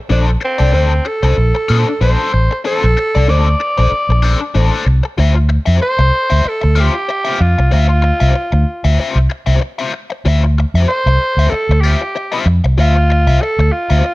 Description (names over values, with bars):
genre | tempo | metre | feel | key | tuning
funk | 95 BPM | 4/4 | swing 56% on 16ths | D minor | A4 = 440 Hz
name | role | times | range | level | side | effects
breathy tenor saxophone | melody | 0.1-14.1 s | C4 to D5 | -17 LUFS | right 1 dB | plate reverb
overdriven electric guitar | accompaniment | 0.1-14.1 s | D4 to E5 | -20 LUFS | left 5 dB | wah, plate reverb
vintage muted fingered electric bass | bass | 0.1-14.0 s | A1 to Bb2 | -12 LUFS | equal | none
room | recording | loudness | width
little or no reverb | dark, warm production | -11 LUFS | side -19 dB against mid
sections
0.0-5.2 A section; 5.2-14.1 B section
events
none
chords
0.0 Bbmaj9; 5.2 Dm9